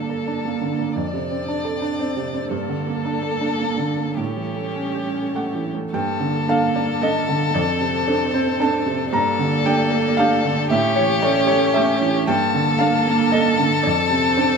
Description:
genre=neoclassical piano and strings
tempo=114 BPM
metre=3/4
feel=rubato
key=G minor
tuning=A4 = 441 Hz
part: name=rich violin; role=melody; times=0.0-14.6 s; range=G4 to D5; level=-24 LUFS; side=left 6 dB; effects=none
part: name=rich cello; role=second line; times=0.0-14.6 s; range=Bb3 to C#4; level=-26 LUFS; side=right 3 dB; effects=none
part: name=felt-muted upright piano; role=accompaniment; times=0.0-14.6 s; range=F2 to Bb5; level=-20 LUFS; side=right 2 dB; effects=none
part: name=warm chamber string section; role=sustained chords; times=0.0-14.6 s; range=G3 to A5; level=-30 LUFS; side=left 1 dB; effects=none
room=wet studio reverb, RT60 0.6 s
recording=band playing live in one room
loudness=-18 LUFS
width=side -5 dB against mid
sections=0.0-5.9 A section; 5.9-14.6 B section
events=none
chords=0.0 Gmadd9; 1.0 Dm7/F; 2.5 Gmadd9; 4.2 A7; 5.9 Gmadd9; 7.5 Dm7/F; 9.1 Gmadd9; 10.7 A7; 12.3 Gmadd9; 13.8 Dm7/F

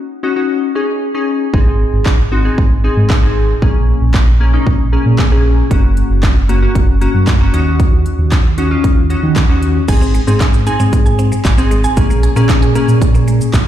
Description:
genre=dance-pop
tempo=115 BPM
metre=4/4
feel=straight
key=unclear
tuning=A4 = 440 Hz
part: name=glassy digital keys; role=accompaniment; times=0.0-13.5 s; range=Bb3 to Ab4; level=-17 LUFS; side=left 3 dB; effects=chorus, sidechain pumping
part: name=sub bass with octave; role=bass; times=1.5-13.7 s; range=Gb1 to Eb3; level=-13 LUFS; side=right 1 dB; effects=sidechain pumping
part: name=house drum kit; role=drums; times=1.5-13.7 s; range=crash cymbal, handclaps, hi-hat, kick drum, shaker, snare drum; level=-14 LUFS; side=equal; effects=none
part: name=mallet-like synth pluck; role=arpeggios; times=9.9-13.4 s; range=Ab3 to Ab5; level=-22 LUFS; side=right 6 dB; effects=chorus, sidechain pumping, tape echo
room=light reverb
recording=played on a big sound system in a bare room, large studio reverb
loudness=-10 LUFS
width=side -11 dB against mid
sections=0.0-9.9 A section; 9.9-13.7 B section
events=none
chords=0.0 Ebm7; 1.5 Ab; 3.6 Bbm7; 5.7 Gb; 7.5 Ebm7; 9.9 Ab; 12.0 Bbm7

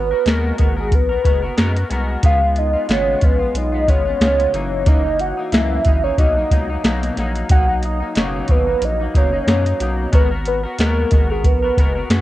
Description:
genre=indie pop, bedroom pop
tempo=91 BPM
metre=4/4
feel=swing 55% on 16ths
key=B major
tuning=A4 = 440 Hz
part: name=warm velvety synth lead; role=melody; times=0.0-12.2 s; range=G#4 to F#5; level=-20 LUFS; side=right 1 dB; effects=tremolo, wide subtle chorus, analog delay
part: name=clean electric guitar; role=accompaniment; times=0.0-12.2 s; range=F#2 to A#4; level=-25 LUFS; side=left 2 dB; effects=analog chorus, vibrato effect, cassette tape
part: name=round analog bass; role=bass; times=0.0-12.2 s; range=F#1 to F#2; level=-22 LUFS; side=equal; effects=none
part: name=soft vintage rhythm box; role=drums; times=0.3-12.2 s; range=hi-hat, kick drum, snare drum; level=-16 LUFS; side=equal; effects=vintage 12-bit sampler grit, cassette tape
room=light reverb, digital ambience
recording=home recording on cassette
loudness=-15 LUFS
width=side -15 dB against mid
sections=0.0-7.5 A section; 7.5-12.2 A section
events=none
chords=0.0 G#m9; 2.2 C#7; 4.5 F#13; 6.2 Bmaj7

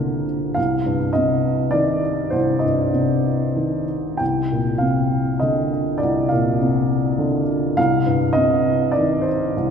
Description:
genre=classical, lyrical solo piano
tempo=101 BPM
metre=3/4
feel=rubato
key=C minor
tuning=A4 = 441 Hz
part: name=dark upright piano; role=solo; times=0.0-9.7 s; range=C2 to G5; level=-17 LUFS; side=equal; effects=none
room=wet cathedral reverb, RT60 4.5 s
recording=recorded in a church or concert hall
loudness=-17 LUFS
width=side -7 dB against mid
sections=0.0-9.7 A section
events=none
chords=0.0 Bb/C; 0.6 Cm; 4.2 Bb/C; 7.8 Cm

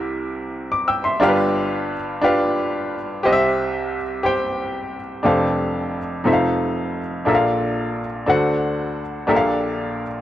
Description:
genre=gospel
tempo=59 BPM (dotted quarters)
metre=6/8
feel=straight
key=F major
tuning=A4 = 440 Hz
part: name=bright upright piano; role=solo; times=0.0-10.2 s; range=F1 to E6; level=-18 LUFS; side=equal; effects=none
room=light reverb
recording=dry, close 1970s-style studio recording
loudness=-18 LUFS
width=side -12 dB against mid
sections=0.0-5.3 A section; 5.3-10.2 B section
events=none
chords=0.0 C7; 1.2 G7; 3.2 C; 5.3 F69; 6.3 F7; 7.3 Bbmaj7; 8.3 D7; 9.3 Gm9/Bb

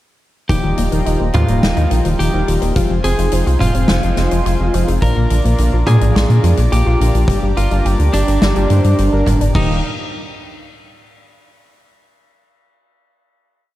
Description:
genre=synthwave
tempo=106 BPM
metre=4/4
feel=straight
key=Eb major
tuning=A4 = 438 Hz
part: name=lightly driven lead guitar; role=melody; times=0.5-9.8 s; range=D4 to Bb4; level=-22 LUFS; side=equal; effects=digital delay
part: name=brassy analog pad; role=sustained chords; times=0.5-9.8 s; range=Eb4 to D6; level=-26 LUFS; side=right 1 dB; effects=chorus, tremolo, sidechain pumping
part: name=analog pluck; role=arpeggios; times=0.5-9.8 s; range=C3 to G4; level=-27 LUFS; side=right 2 dB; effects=chorus, cassette tape, digital delay
part: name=mellow electric guitar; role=riff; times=0.5-9.8 s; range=Bb2 to D4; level=-23 LUFS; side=left 2 dB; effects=analog chorus, digital delay
part: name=analog synth brass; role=stabs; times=0.5-9.8 s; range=G2 to C5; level=-25 LUFS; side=left 2 dB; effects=chorus, digital delay
part: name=round analog bass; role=bass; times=0.5-9.8 s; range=Eb1 to Bb2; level=-15 LUFS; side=equal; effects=tube saturation
part: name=big rock drum kit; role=drums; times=0.5-9.7 s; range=crash cymbal, hi-hat, snare drum, toms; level=-21 LUFS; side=equal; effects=none
part: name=kick drum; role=drums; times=0.5-9.7 s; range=none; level=-21 LUFS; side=equal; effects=none
room=light reverb, studio ambience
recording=dark, warm production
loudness=-12 LUFS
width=side -15 dB against mid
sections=0.5-9.6 verse; 9.6-11.8 final chord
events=none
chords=0.5 Ebadd9; 2.8 Fm; 5.0 Bb; 7.3 Gm; 9.6 Ebadd9

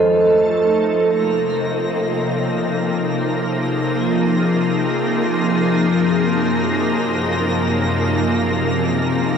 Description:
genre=ambient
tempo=free time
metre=none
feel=none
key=Bb minor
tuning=A4 = 440 Hz
part: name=soft additive organ-like pad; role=sustained chords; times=0.0-9.4 s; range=Gb2 to A4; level=-18 LUFS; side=left 1 dB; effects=ensemble chorus, built-in reverb
part: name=vibraphone with hard mallets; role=arpeggios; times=0.0-9.4 s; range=F4 to Eb5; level=-21 LUFS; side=right 2 dB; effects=ping-pong delay
part: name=clear studio violin section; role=texture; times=1.1-9.4 s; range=Bb3 to Bb6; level=-24 LUFS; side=right 1 dB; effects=none
room=wet cathedral reverb, RT60 5.7 s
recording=dark, warm production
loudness=-16 LUFS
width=side -7 dB against mid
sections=0.0-1.2 A section; 1.2-9.4 B section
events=none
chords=0.0 F7; 1.2 Bbm7; 5.7 Gbmaj7

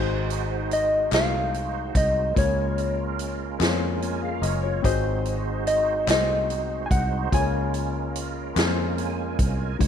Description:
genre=slow gospel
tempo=48 BPM (dotted quarters)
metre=6/8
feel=straight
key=Db major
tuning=A4 = 440 Hz
part: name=mellow electric guitar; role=melody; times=0.0-9.4 s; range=C5 to Ab5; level=-26 LUFS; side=left 1 dB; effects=none
part: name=warm upright piano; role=accompaniment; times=0.0-9.9 s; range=Ab2 to F5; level=-30 LUFS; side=left 14 dB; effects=none
part: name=bright tonewheel organ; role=sustained chords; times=0.0-9.9 s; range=Ab3 to Ab5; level=-32 LUFS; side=right 12 dB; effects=slow rotary speaker, chorus vibrato
part: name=fingered electric bass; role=bass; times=0.0-9.9 s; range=Gb1 to F2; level=-27 LUFS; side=equal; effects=none
part: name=swinging big-band drum kit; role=drums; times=0.3-9.9 s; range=hi-hat, kick drum, snare drum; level=-27 LUFS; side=equal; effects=none
part: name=group handclap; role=percussion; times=1.1-9.0 s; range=none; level=-33 LUFS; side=left 17 dB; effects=none
room=light reverb, studio ambience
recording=1960s-style stereo with parts hard left and right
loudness=-22 LUFS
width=side -8 dB against mid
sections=0.0-9.8 A section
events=tonewheel organ fill 3.6-4.8, 8.6-9.8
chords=0.0 Ab7; 2.4 Db6; 4.8 Ab7; 7.3 Db6

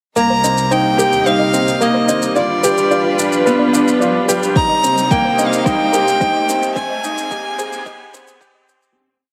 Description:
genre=piano and strings electronica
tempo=109 BPM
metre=4/4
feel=straight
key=C minor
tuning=A4 = 441 Hz
part: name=dark violin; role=melody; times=0.2-8.4 s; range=D5 to Bb5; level=-20 LUFS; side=equal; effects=none
part: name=rich symphonic string section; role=sustained chords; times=0.2-8.9 s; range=C3 to B4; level=-23 LUFS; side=equal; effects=sidechain pumping
part: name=soft round pluck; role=arpeggios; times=0.2-8.7 s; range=Bb4 to G5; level=-26 LUFS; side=equal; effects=chorus, sidechain pumping, digital delay
part: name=clear upright piano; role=riff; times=0.2-9.0 s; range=Bb3 to Ab4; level=-20 LUFS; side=equal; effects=none
part: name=warm sub bass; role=bass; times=0.2-8.9 s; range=G1 to Eb2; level=-31 LUFS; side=equal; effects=sidechain pumping, high-pass filter
part: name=shaker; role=drums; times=0.2-8.9 s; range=none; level=-27 LUFS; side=equal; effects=small room reverb
part: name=riser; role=sound effects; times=2.1-9.0 s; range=none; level=-33 LUFS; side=equal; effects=none
part: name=electronic kick drum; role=drums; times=4.6-8.5 s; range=none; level=-21 LUFS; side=equal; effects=small room reverb
room=moderate concert hall reverb, RT60 2.0 s, studio reverb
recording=high-pass filter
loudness=-15 LUFS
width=mono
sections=0.2-9.0 build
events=build-up 0.2-9.0; filter sweep on synth arpeggio sound 0.2-9.0; riser 2.1-9.0; fade-out 6.0-9.0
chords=0.2 Cm7; 2.4 G7; 4.6 Cm7; 6.8 Abmaj7

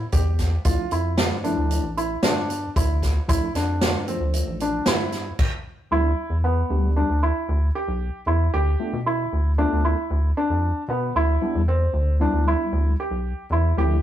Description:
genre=progressive instrumental, band music in an uneven meter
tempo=114 BPM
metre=5/4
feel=straight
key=unclear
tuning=A4 = 441 Hz
part: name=felt-muted upright piano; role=arpeggios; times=0.0-14.0 s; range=B3 to G4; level=-25 LUFS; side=right 1 dB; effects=none
part: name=rubbery square bass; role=bass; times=0.0-14.0 s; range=A1 to B2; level=-22 LUFS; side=equal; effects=none
part: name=swinging big-band drum kit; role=drums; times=0.1-5.5 s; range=crash cymbal, hi-hat, kick drum, snare drum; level=-23 LUFS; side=equal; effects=none
part: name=tine electric piano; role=accompaniment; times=0.7-14.0 s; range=F3 to G4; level=-28 LUFS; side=left 2 dB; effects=overdrive, medium stereo tremolo
room=light reverb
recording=rough rehearsal-room recording, tube saturation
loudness=-20 LUFS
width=side -11 dB against mid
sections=0.0-5.9 A section; 5.9-14.0 B section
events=stop 5.4-5.9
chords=0.0 Em; 0.7 Dmadd9; 5.9 G6; 8.5 G7/D; 11.2 Cmaj7/D

